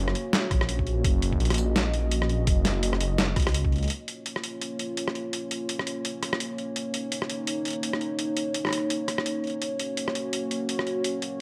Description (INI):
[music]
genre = half-time drum and bass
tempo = 168 BPM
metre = 4/4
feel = swing 57% on 16ths, half-time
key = Bb minor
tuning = A4 = 438 Hz
[part]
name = dark analog pad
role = sustained chords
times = 0.0-11.4 s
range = Bb3 to Eb5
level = -33 LUFS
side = equal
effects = chorus, sidechain pumping
[part]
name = dark detuned saw bass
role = bass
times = 0.0-3.9 s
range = Gb1 to Db2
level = -29 LUFS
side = equal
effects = none
[part]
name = boom bap sampler-style drum kit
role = drums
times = 0.1-11.3 s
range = hi-hat, rim click, snare drum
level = -31 LUFS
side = equal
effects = none
[part]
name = electronic kick drum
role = drums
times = 0.5-3.7 s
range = none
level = -28 LUFS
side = equal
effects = none
[sound]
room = light reverb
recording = none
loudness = -28 LUFS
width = mono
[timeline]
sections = 0.0-3.9 A section; 3.9-11.4 B section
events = none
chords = 0.0 Gb; 3.9 Bbm; 9.6 Gb